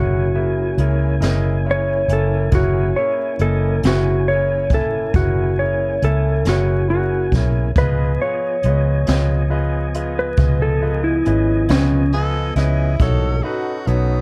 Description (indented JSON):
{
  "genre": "slow blues",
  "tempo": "46 BPM (dotted quarters)",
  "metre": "12/8",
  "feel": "straight",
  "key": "F# mixolydian",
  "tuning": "A4 = 440 Hz",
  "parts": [
    { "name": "clean lap steel guitar", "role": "melody", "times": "0.0-12.1 s", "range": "C#4 to C#5", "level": "-23 LUFS", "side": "equal", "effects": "plate reverb" },
    { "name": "clear concert grand piano", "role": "accompaniment", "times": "0.0-14.2 s", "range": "A#3 to G#5", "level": "-29 LUFS", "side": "equal", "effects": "plate reverb" },
    { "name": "tonewheel organ", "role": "sustained chords", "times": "0.0-14.2 s", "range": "E3 to G#5", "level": "-31 LUFS", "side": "equal", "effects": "slow rotary speaker, plate reverb" },
    { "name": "vintage muted fingered electric bass", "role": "bass", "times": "0.0-14.2 s", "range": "F#1 to C#2", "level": "-21 LUFS", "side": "equal", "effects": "none" },
    { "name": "jazz brush drum kit", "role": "drums", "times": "0.8-14.1 s", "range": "hi-hat, kick drum, snare drum", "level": "-24 LUFS", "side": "equal", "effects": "none" },
    { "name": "growling tenor saxophone", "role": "second line", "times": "12.1-14.2 s", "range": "B3 to A4", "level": "-28 LUFS", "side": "equal", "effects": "plate reverb" }
  ],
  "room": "light reverb",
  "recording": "vinyl crackle",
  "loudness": "-18 LUFS",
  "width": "mono",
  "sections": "0.0-14.2 A section",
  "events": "none",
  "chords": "0.0 F#7; 7.8 C#7; 13.0 B7",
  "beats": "1.22 | 2.53 3.84 5.15 6.45 | 7.76 9.07 10.38 11.69 | 13.00"
}